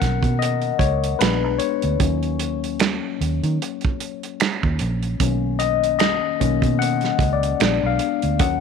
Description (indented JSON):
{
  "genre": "R&B, neo-soul",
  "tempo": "75 BPM",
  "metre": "4/4",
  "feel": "swing 56% on 16ths",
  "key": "B major",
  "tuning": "A4 = 440 Hz",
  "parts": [
    { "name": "barky tine electric piano", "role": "accompaniment", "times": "0.0-8.6 s", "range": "D#3 to F#5", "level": "-22 LUFS", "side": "left 14 dB", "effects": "overdrive, phaser" },
    { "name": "vintage muted fingered electric bass", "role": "bass", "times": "0.0-8.6 s", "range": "A#1 to D#3", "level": "-23 LUFS", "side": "right 2 dB", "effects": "none" },
    { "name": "warm soul drum kit", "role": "drums", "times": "0.0-8.6 s", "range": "finger snaps, hi-hat, kick drum, snare drum", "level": "-22 LUFS", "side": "right 5 dB", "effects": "none" }
  ],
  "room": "small room ambience",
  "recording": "1960s-style stereo",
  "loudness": "-18 LUFS",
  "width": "side -6 dB against mid",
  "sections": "0.0-8.6 A section",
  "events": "tine electric piano solo 0.0-8.6",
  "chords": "0.0 Bmaj9; 1.2 A#7b9; 2.0 D#m7; 5.2 Bmaj9; 7.6 A#7b9"
}